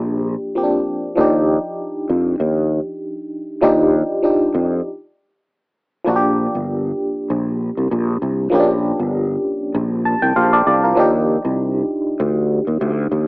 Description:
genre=afrobeats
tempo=98 BPM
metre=4/4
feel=swing 55% on 16ths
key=Bb major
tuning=A4 = 440 Hz
part: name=barking FM electric piano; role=accompaniment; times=0.0-13.3 s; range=F3 to A5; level=-18 LUFS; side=equal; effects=chorus, phaser, tremolo, cassette tape
part: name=sustaining fretless electric bass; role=bass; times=0.0-13.3 s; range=G1 to F2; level=-18 LUFS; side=equal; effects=wide subtle chorus
room=light reverb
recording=home recording on cassette, AM radio sound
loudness=-15 LUFS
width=side -28 dB against mid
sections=0.0-6.1 A section; 6.1-13.3 B section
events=stop 4.8-6.1; FM electric piano fill 9.7-11.0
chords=0.0 Bb6; 1.2 Ebmaj9; 6.1 Bb6; 11.0 Ebmaj9

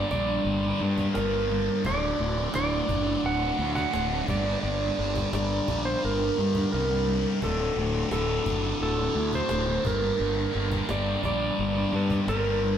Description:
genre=psychedelic rock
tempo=86 BPM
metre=4/4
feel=straight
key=unclear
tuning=A4 = 442 Hz
part: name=clean lap steel guitar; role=melody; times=0.0-12.8 s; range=A4 to F#5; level=-29 LUFS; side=right 2 dB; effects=none
part: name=combo organ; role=sustained chords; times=0.0-12.8 s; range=F#3 to A5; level=-39 LUFS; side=right 2 dB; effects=none
part: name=thick fuzz guitar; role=riff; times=0.0-12.8 s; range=D2 to G3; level=-28 LUFS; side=equal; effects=distortion, phaser
part: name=fuzz fingered electric bass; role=bass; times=0.0-12.8 s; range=D1 to G2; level=-29 LUFS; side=left 1 dB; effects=overdrive
part: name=cajon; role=drums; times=0.1-12.4 s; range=none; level=-37 LUFS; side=equal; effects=none
room=wet stone room reverb, RT60 1.3 s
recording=band playing live in one room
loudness=-24 LUFS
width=side -9 dB against mid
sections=0.0-12.8 A section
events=kick and snare drop out 6.7-7.4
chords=0.0 Gmadd9; 1.9 D; 4.3 Gmadd9; 7.4 D; 9.9 Gmadd9

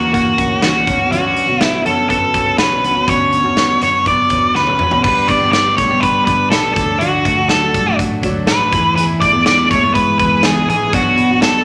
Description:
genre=jangly indie pop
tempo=122 BPM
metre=4/4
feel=straight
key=unclear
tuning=A4 = 440 Hz
part: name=octave-fuzz lead guitar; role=melody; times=0.0-11.6 s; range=F#4 to D5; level=-16 LUFS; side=equal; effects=distortion
part: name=picked steel-string acoustic guitar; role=accompaniment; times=0.0-11.6 s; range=G2 to G#4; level=-22 LUFS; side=equal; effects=none
part: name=twelve-string electric guitar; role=arpeggios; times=0.0-11.6 s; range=G2 to F#4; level=-25 LUFS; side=equal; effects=phaser
part: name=vintage muted picked electric bass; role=bass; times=0.0-11.6 s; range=F#1 to F#2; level=-32 LUFS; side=equal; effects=none
part: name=big rock drum kit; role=drums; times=0.1-11.5 s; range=crash cymbal, hi-hat, kick drum, snare drum, toms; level=-22 LUFS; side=equal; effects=none
room=moderate large studio reverb, RT60 1.2 s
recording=none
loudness=-14 LUFS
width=mono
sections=0.0-5.0 A section; 5.0-11.6 B section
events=drum fill 4.6-5.0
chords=0.0 F#7; 0.9 Bmadd9; 5.0 G; 6.8 D; 8.7 E; 10.9 Bm

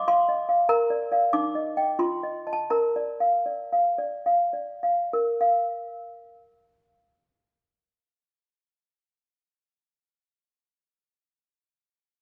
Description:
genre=classical, lullaby for toy piano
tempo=66-98 BPM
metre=3/4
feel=straight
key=Bb major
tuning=A4 = 438 Hz
part: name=toy piano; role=solo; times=0.0-10.2 s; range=Eb4 to D6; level=-25 LUFS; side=equal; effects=none
room=light reverb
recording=close, detailed microphones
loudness=-25 LUFS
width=mono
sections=0.0-5.1 A section; 5.1-10.5 B section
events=slowing down 0.0-5.1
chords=0.0 F7(no3); 0.7 Bb; 1.3 Eb; 2.0 F7; 2.7 Bb; 5.1 Bb5

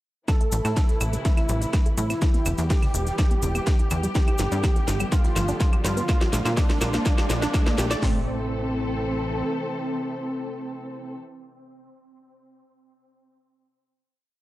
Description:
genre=melodic techno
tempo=124 BPM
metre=4/4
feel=straight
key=A minor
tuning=A4 = 440 Hz
part: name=wide unison lead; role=melody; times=0.3-11.2 s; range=C4 to A4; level=-30 LUFS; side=equal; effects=analog delay
part: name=muted studio string section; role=sustained chords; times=0.3-11.2 s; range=C3 to A4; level=-34 LUFS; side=left 1 dB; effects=sidechain pumping
part: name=wide unison pluck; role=arpeggios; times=0.3-8.2 s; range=D3 to D5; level=-32 LUFS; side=equal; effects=sidechain pumping, analog delay
part: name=deep reggae drum kit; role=drums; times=0.3-7.9 s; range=hi-hat, snare drum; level=-46 LUFS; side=left 1 dB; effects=none
part: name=techno drum kit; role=drums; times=0.3-8.1 s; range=hi-hat, kick drum, snare drum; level=-22 LUFS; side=equal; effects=overdrive
part: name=techno drum kit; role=drums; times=0.3-8.0 s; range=claves, hi-hat, snare drum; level=-30 LUFS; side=equal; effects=overdrive
part: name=cabasa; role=percussion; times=0.3-8.0 s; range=none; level=-36 LUFS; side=left 3 dB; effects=none
part: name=riser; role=sound effects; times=3.8-8.0 s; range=none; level=-38 LUFS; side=right 2 dB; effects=none
part: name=tight sequencer bass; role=bass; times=0.5-9.4 s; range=E1 to Bb2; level=-26 LUFS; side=equal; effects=sidechain pumping
room=light reverb, small room reverb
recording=dry, gritty hardware recording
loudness=-21 LUFS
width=side -16 dB against mid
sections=0.3-8.0 build; 8.0-11.9 final chord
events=build-up 0.3-8.0; drum fill 0.3-8.0; filter sweep on synth arpeggio sound 0.3-8.0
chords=0.3 Am; 2.2 Em; 4.2 Gadd9; 6.1 Bbadd9; 8.0 Am

